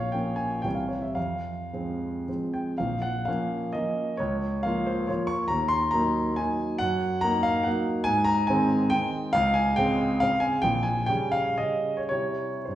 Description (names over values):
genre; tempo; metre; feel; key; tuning
classical, romantic triple-time dance for piano with dotted rhythms; 105-153 BPM; 3/4; rubato; Bb minor; A4 = 440 Hz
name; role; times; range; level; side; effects
warm concert grand piano; solo; 0.0-12.8 s; Bb1 to Db6; -24 LUFS; equal; none
room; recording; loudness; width
wet recital hall reverb, RT60 1.4 s; heard from further back in the room; -24 LUFS; side -12 dB against mid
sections
0.0-2.8 A section; 2.8-12.8 B section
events
none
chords
0.0 Bbm; 0.7 C; 1.2 Fm; 2.8 Bbm; 4.2 Bbm/Db; 5.5 Ebm; 6.8 Ebm/Gb; 8.1 Ab; 9.4 Db5; 10.6 Gdim/Bb; 12.1 C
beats
0.15 0.65 | 1.17 1.72 2.28 | 2.79 3.27 3.75 | 4.19 4.65 5.09 | 5.51 5.94 6.39 | 6.81 7.24 7.66 | 8.07 8.49 8.93 | 9.35 9.79 10.23 | 10.65 11.10 11.60 | 12.12 12.67